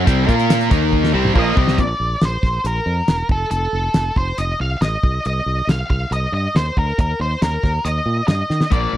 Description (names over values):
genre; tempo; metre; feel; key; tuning
classic rock; 139 BPM; 4/4; straight; unclear; A4 = 436 Hz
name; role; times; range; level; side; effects
cranked stack guitar; riff; 0.0-1.8, 8.7-9.0 s; Bb2 to Bb4; -20 LUFS; left 13 dB; overdrive
cranked stack guitar; riff; 0.0-1.8 s; Bb2 to Bb4; -20 LUFS; right 17 dB; overdrive
fingered electric bass; bass; 0.0-9.0 s; E1 to Eb3; -21 LUFS; equal; none
damped 70s drum kit; drums; 0.1-8.8 s; hi-hat, kick drum, snare drum, toms; -17 LUFS; equal; none
octave-fuzz lead guitar; melody; 1.4-9.0 s; A4 to F5; -22 LUFS; equal; distortion
room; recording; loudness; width
studio reverb; dry, close 1970s-style studio recording; -16 LUFS; side -12 dB against mid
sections
0.0-1.8 A section; 1.8-9.0 B section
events
drum fill 0.9-1.8, 8.5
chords
0.1 C5; 0.3 Bb5; 0.7 Eb5; 1.1 Cm; 1.8 Bb; 3.3 F; 5.0 Cm; 7.0 Eb5